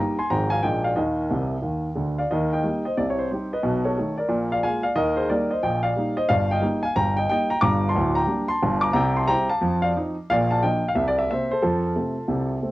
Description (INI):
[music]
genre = jazz, stride piano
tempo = 180 BPM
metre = 4/4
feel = swing 64% on 8ths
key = Eb major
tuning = A4 = 441 Hz
[part]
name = warm grand piano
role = solo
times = 0.0-12.7 s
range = D1 to D6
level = -20 LUFS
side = equal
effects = cassette tape
[sound]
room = moderate small room ambience, RT60 0.5 s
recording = home recording on cassette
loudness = -20 LUFS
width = side -17 dB against mid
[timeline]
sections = 0.0-2.3 A section; 2.3-12.7 B section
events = grand piano fill 1.3-2.3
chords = 0.3 Ab6; 0.6 Bb7; 1.0 Eb5; 2.3 Eb; 3.0 Cm; 3.6 B7; 4.3 Bb7; 5.0 Eb; 6.3 Eb/G; 7.6 Gm; 8.9 C; 9.6 F5; 10.3 Bb; 10.9 C9; 11.6 F